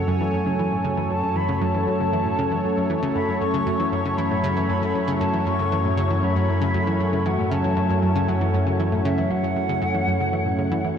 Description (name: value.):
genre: ambient, sequencer-driven space music.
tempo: 117 BPM.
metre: 4/4.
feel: straight.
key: F# minor.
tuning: A4 = 440 Hz.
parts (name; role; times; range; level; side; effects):
mellow hollow silver concert flute; melody; 0.0-10.8 s; E5 to C#6; -28 LUFS; equal; shimmer reverb, ping-pong delay.
sweeping resonant pad; sustained chords; 0.0-11.0 s; F#3 to C#5; -24 LUFS; equal; chorus, shimmer reverb.
fat analog bass; bass; 0.0-11.0 s; F#2; -26 LUFS; equal; none.
wind-like tuned noise texture; texture; 0.0-11.0 s; E4 to G#6; -37 LUFS; left 2 dB; built-in reverb, shimmer reverb.
analog pluck; riff; 0.1-10.9 s; F#2 to E3; -27 LUFS; equal; chorus, ping-pong delay.
room: wet lush hall reverb, RT60 2.8 s.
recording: dreamy mix soaked in reverb.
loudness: -20 LUFS.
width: side -8 dB against mid.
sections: 0.0-11.0 A section.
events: fade-in on synth texture 0.0-11.0.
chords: 0.0 F#m.